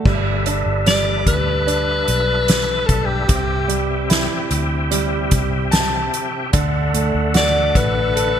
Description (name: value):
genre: pop ballad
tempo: 74 BPM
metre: 4/4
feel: straight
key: G major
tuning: A4 = 441 Hz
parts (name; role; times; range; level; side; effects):
- clear concert grand piano; accompaniment; 0.0-8.4 s; C3 to A5; -23 LUFS; right 4 dB; none
- tonewheel organ; sustained chords; 0.1-8.4 s; C3 to G5; -24 LUFS; left 2 dB; chorus vibrato, fast rotary speaker
- vintage muted fingered electric bass; bass; 0.1-8.4 s; G1 to D2; -22 LUFS; left 1 dB; none
- soft-mallet drum kit; drums; 0.1-8.4 s; crash cymbal, hi-hat, kick drum, snare drum; -20 LUFS; equal; gated reverb
- clear alto saxophone; melody; 0.9-8.4 s; G4 to D5; -20 LUFS; left 2 dB; ping-pong delay
room: light reverb, small room ambience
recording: bright 1980s-style digital production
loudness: -16 LUFS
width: side -9 dB against mid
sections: 0.1-8.4 A section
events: grand piano fill 5.3-6.5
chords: 0.1 G6; 3.3 C; 6.5 Dadd9